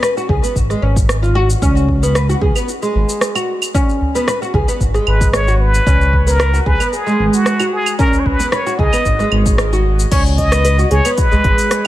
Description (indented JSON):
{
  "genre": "organic downtempo",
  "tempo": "113 BPM",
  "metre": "4/4",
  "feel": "straight",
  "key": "unclear",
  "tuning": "A4 = 440 Hz",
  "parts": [
    { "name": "oud", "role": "arpeggios", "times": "0.0-11.8 s", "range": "Ab3 to Cb5", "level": "-18 LUFS", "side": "equal", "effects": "low-pass filter, digital delay" },
    { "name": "organic electronic drum kit", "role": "drums", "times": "0.0-11.9 s", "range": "claves, crash cymbal, hi-hat, rim click, shaker", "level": "-21 LUFS", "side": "right 1 dB", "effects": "overdrive, small room reverb" },
    { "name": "smooth gliding synth bass", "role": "bass", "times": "0.3-11.5 s", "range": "Ab1 to Db2", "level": "-15 LUFS", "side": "equal", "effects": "sidechain pumping" },
    { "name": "electronic kick drum", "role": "drums", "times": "0.3-11.6 s", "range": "none", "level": "-16 LUFS", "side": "equal", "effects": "small room reverb" },
    { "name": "udu", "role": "percussion", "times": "4.0-4.1, 8.1-11.4 s", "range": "none", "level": "-20 LUFS", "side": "equal", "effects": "none" },
    { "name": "trumpet with plunger mute", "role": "melody", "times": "5.1-11.9 s", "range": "Gb4 to Eb5", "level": "-18 LUFS", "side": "equal", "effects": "tape echo" }
  ],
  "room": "studio reverb",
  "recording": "none",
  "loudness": "-12 LUFS",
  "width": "side -14 dB against mid",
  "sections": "0.0-10.1 A section; 10.1-11.9 B section",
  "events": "none",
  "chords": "0.0 Cb5; 1.6 Db7sus4; 10.1 Db7(no3)",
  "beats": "0.03 0.56 1.09 | 1.62 2.15 2.68 3.21 | 3.75 4.28 4.81 5.34 | 5.87 6.40 6.93 7.46 | 7.99 8.52 9.05 9.59 | 10.12 10.65 11.18 11.71"
}